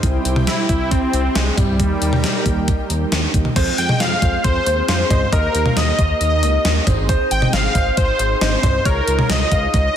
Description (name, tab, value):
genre	synth-pop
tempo	136 BPM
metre	4/4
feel	straight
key	F minor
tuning	A4 = 440 Hz
part	mellow synth brass	accompaniment	0.0-10.0 s	G3 to Db5	-26 LUFS	right 1 dB	chorus, shimmer reverb
part	brassy analog pad	sustained chords	0.0-3.5 s	Eb4 to G5	-28 LUFS	equal	chorus, shimmer reverb
part	smooth synth bass	bass	0.0-9.9 s	Ab1 to F2	-21 LUFS	equal	none
part	gated 80s digital drum machine	drums	0.0-9.8 s	cowbell, crash cymbal, hi-hat, kick drum, snare drum, toms	-18 LUFS	equal	gated reverb, gated reverb snare, overdrive
part	wide unison lead	melody	0.5-10.0 s	G3 to G5	-20 LUFS	equal	digital delay, shimmer reverb
part	clear baby grand piano	second line	3.6-9.7 s	C5 to F5	-26 LUFS	right 1 dB	digital delay, shimmer reverb
room	moderate lush hall reverb, RT60 1.7 s, digital ambience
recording	dense, heavily limited modern master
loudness	-15 LUFS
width	side -9 dB against mid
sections	0.0-3.6 A section; 3.6-10.0 B section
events	none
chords	0.0 C; 1.8 Eb; 3.6 Fm; 5.3 Eb; 6.9 Ab; 8.9 Dbadd9